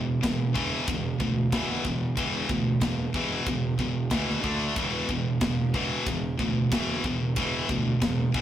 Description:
heavy metal; 92 BPM; 4/4; straight; A4 = 440 Hz
heavy high-gain guitar; riff; 0.0-8.4 s; E2 to D4; -29 LUFS; left 3 dB; distortion
high-gain distorted guitar; riff; 0.0-8.4 s; E2 to D4; -29 LUFS; right 3 dB; distortion
fuzz fingered electric bass; bass; 0.0-8.4 s; E1 to D2; -33 LUFS; equal; overdrive
tight metal drum kit; drums; 0.2-8.4 s; kick drum, ride cymbal, snare drum; -32 LUFS; equal
light reverb; rough rehearsal-room recording, tube saturation; -24 LUFS; side -11 dB against mid
0.0-8.4 A section
0.0 E5; 4.4 D5; 4.8 E5
0.23 0.88 1.53 | 2.17 2.82 3.47 4.12 | 4.77 5.42 6.07 6.72 | 7.37 8.02

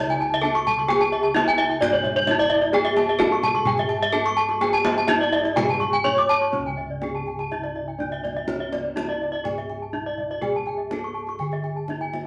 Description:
Balinese gamelan; 126 BPM; 4/4; uneven beats; C# pelog; A4 = 438 Hz
gamelan-type bronze metallophone; melody; 0.0-12.3 s; C#4 to C#5; -29 LUFS; equal
gamelan-type bronze metallophone; arpeggios; 0.0-12.3 s; C#5 to C#6; -30 LUFS; equal
gamelan-type bossed gongs; bass; 0.0-12.3 s; C#2 to G#4-30c; -34 LUFS; equal
gamelan-type bronze metallophone; arpeggios; 0.1-12.1 s; C#5 to D6+20c; -26 LUFS; equal
kendang; percussion; 0.1-12.2 s; -32 LUFS; equal
wet studio reverb, RT60 0.7 s; -23 LUFS; mono
0.0-6.5 A section; 6.5-12.3 B section
0.43 | 0.89 1.35 1.81 2.28 | 2.74 3.20 3.67 4.14 | 4.61 5.09 5.57 6.05 | 6.53 7.02 7.51 7.99 | 8.48 8.97 9.46 9.94 | 10.43 10.92 11.40 11.89

